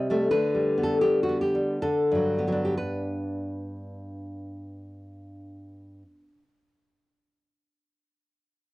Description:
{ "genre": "romantic piece for solo classical guitar", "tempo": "58-93 BPM", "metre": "3/4", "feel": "rubato", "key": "G major", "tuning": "A4 = 441 Hz", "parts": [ { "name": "nylon-string guitar", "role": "solo", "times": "0.0-6.7 s", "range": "G2 to Eb5", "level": "-25 LUFS", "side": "left 1 dB", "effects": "cassette tape" } ], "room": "moderate studio reverb, RT60 0.5 s", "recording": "home recording on cassette", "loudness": "-23 LUFS", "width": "side -18 dB against mid", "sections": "0.0-2.8 A section; 2.8-8.1 B section", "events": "slowing down 0.0-2.8", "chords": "0.3 G/D; 1.8 D; 2.8 G" }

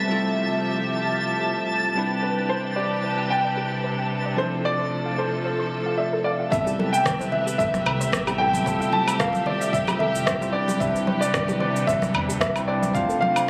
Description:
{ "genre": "sunset chillout", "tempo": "112 BPM", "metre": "4/4", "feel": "swing 53% on 16ths", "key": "A minor", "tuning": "A4 = 440 Hz", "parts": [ { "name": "bell-like tine electric piano", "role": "accompaniment", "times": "0.0-13.5 s", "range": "F3 to C5", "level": "-31 LUFS", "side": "equal", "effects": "none" }, { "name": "warm chamber string section", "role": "sustained chords", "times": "0.0-13.5 s", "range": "C3 to E5", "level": "-30 LUFS", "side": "equal", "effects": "none" }, { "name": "twinkling granular texture", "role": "texture", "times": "0.0-6.5 s", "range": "A5", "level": "-32 LUFS", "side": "equal", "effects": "built-in reverb" }, { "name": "electronic shaker, rim click and woodblock", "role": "drums", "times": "0.1-13.5 s", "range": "none", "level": "-30 LUFS", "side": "equal", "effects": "low-pass filter on perc, low-pass filter on snare" }, { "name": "warm grand piano", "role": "melody", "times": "2.2-13.5 s", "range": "B4 to A5", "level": "-27 LUFS", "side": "equal", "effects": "tape echo" }, { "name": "soft round pluck", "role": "arpeggios", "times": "2.2-13.3 s", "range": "G4 to C6", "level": "-37 LUFS", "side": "equal", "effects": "chorus, tape echo" }, { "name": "warm sub bass", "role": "bass", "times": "6.5-13.0 s", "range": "F1 to E2", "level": "-35 LUFS", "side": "equal", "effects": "none" }, { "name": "electronic kick drum", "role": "drums", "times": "6.5-13.1 s", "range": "none", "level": "-35 LUFS", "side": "equal", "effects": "overdrive" }, { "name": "congas", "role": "percussion", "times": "6.8-13.3 s", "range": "none", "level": "-33 LUFS", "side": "equal", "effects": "none" } ], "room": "moderate lush hall reverb, RT60 2.6 s", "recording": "recorded on a phone in the room, club reverb", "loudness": "-23 LUFS", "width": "mono", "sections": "0.0-6.5 A section; 6.5-13.5 B section", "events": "none", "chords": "0.1 Fmaj9; 2.0 Cmaj9; 4.4 Dm7; 6.5 Am9; 8.7 Fmaj9; 10.5 Cmaj9; 13.0 Dm7" }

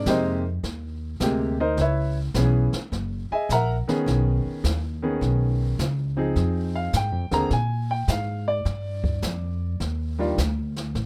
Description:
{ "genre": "jazz piano trio", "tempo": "104 BPM", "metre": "4/4", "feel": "swing 66% on 8ths", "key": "unclear", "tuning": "A4 = 440 Hz", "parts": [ { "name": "warm concert grand piano", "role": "melody", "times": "0.0-10.4 s", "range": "C3 to Bb5", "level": "-28 LUFS", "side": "equal", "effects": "none" }, { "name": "upright bass", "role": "bass", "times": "0.0-11.1 s", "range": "Gb1 to Bb2", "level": "-27 LUFS", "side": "equal", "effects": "none" }, { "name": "jazz brush drum kit", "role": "drums", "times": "0.1-11.1 s", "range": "brushed snare drum, hi-hat, kick drum, snare drum", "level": "-34 LUFS", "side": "equal", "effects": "none" } ], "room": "little or no reverb", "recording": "rough home demo mix", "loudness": "-25 LUFS", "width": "mono", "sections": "0.0-11.1 A section", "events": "none", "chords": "0.0 Abmaj9; 1.8 Dbm7; 2.9 Gb13; 4.1 B69; 6.4 Fm7; 7.5 Bb7(no3); 8.7 Ebmaj9" }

